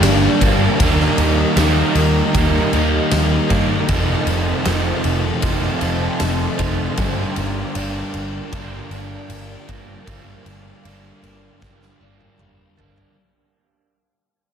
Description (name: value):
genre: rock, shoegaze and dream pop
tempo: 78 BPM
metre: 4/4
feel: straight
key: G minor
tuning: A4 = 437 Hz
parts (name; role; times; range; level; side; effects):
- phased analog pad; sustained chords; 0.0-13.1 s; F4 to Bb5; -29 LUFS; right 1 dB; phaser, chorus
- picked twelve-string acoustic guitar; arpeggios; 0.0-13.2 s; Eb3 to G4; -30 LUFS; left 6 dB; analog chorus, analog delay
- overdriven semi-hollow guitar; riff; 0.0-13.2 s; F2 to Eb4; -21 LUFS; right 8 dB; reverse reverb
- thick fuzz guitar; riff; 0.0-13.2 s; F2 to Eb4; -23 LUFS; left 8 dB; distortion, lush chorus
- vintage muted picked electric bass; bass; 0.0-13.0 s; F1 to G2; -21 LUFS; equal; none
- huge arena drum kit; drums; 0.0-13.2 s; kick drum, ride cymbal, snare drum, toms; -23 LUFS; equal; none
room: moderate plate reverb, RT60 3.6 s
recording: dreamy mix soaked in reverb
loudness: -15 LUFS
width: side -8 dB against mid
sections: 0.0-13.2 A section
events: fade-out 0.0-13.2; drum fill 11.6-13.2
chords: 0.0 Gm7; 0.8 Eb; 3.9 F7; 7.0 Gm7